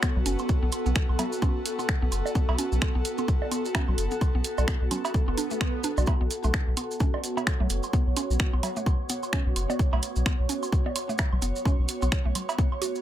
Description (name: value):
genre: minimal techno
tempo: 129 BPM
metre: 4/4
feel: swing 58% on 16ths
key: unclear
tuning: A4 = 440 Hz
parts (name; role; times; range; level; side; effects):
- mallet-like synth pluck; riff; 0.0-12.9 s; A3 to F#4; -35 LUFS; right 2 dB; chorus, sidechain pumping, ping-pong delay
- electronic kick drum; drums; 0.0-12.7 s; none; -25 LUFS; equal; none
- house drum kit; drums; 0.0-12.9 s; finger snaps, hi-hat; -30 LUFS; right 1 dB; none
- maracas; percussion; 0.0-13.0 s; none; -38 LUFS; right 3 dB; none
- woodblock, congas, cowbell and bongos; percussion; 0.0-12.8 s; none; -35 LUFS; right 4 dB; digital delay
- airy breathy pad; texture; 0.0-13.0 s; B3 to C#5; -32 LUFS; equal; chorus, sidechain pumping
- round analog bass; bass; 0.2-12.3 s; F#1 to B1; -26 LUFS; equal; sidechain pumping
- swell; sound effects; 5.3-6.1 s; none; -35 LUFS; right 3 dB; none
room: little or no reverb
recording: none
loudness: -24 LUFS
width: side -12 dB against mid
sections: 0.0-13.0 A section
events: swell 5.3-6.1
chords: 0.0 B7(no3)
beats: 0.03 | 0.49 0.96 1.42 1.89 | 2.35 2.82 3.28 3.75 | 4.21 4.68 5.14 5.61 | 6.07 6.54 7.00 7.47 | 7.93 8.40 8.86 9.33 | 9.79 10.26 10.72 11.19 | 11.65 12.12 12.58